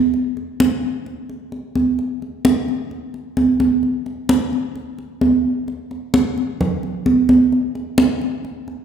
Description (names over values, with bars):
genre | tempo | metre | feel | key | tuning
latin | 130 BPM | 4/4 | straight | none | none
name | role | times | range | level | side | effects
congas | percussion | 0.1-8.8 s | none | -17 LUFS | right 1 dB | none
room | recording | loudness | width
wet recital hall reverb, RT60 1.7 s | recorded in a church or concert hall | -16 LUFS | side -8 dB against mid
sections
0.0-3.8 A section; 3.8-8.8 B section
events
none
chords
none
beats
| 0.14 0.60 1.06 1.52 | 1.99 2.45 2.91 3.37 | 3.83 4.29 4.75 5.21 | 5.67 6.13 6.59 7.05 | 7.51 7.98 8.44